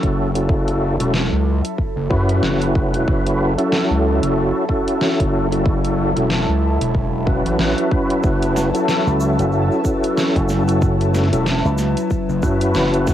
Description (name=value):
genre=glitch hop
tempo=93 BPM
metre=4/4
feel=swing 58% on 16ths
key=F# minor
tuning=A4 = 443 Hz
part: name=warbly tape-like pad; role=sustained chords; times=0.0-13.1 s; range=F#3 to B4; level=-24 LUFS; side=left 1 dB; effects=chorus, built-in reverb, sidechain pumping, cassette tape
part: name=tonewheel organ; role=stabs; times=0.0-13.1 s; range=C#4 to B4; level=-20 LUFS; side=equal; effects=overdrive, chorus vibrato, slow rotary speaker, sidechain pumping, cassette tape, tape echo
part: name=gritty driven synth bass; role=bass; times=0.0-13.1 s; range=E1 to F#2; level=-20 LUFS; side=equal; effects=overdrive
part: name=dubstep drum kit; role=drums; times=0.0-13.1 s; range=hi-hat, snare drum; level=-24 LUFS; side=equal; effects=overdrive, cassette tape
part: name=electronic kick drum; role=drums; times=0.0-13.1 s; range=none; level=-21 LUFS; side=equal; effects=overdrive, cassette tape
part: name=ethereal airy pad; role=texture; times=0.3-13.1 s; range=C#4 to A5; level=-28 LUFS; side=left 1 dB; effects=ensemble chorus, built-in reverb, phaser, sidechain pumping, cassette tape
part: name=tube shaker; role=percussion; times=8.2-13.1 s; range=none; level=-38 LUFS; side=right 3 dB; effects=none
part: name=slap bass with an envelope filter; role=bass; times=9.1-12.7 s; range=F#1 to F#2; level=-18 LUFS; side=equal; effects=tube saturation
room=light reverb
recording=home recording on cassette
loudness=-16 LUFS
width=side -11 dB against mid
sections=0.0-13.1 A section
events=none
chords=0.0 F#m7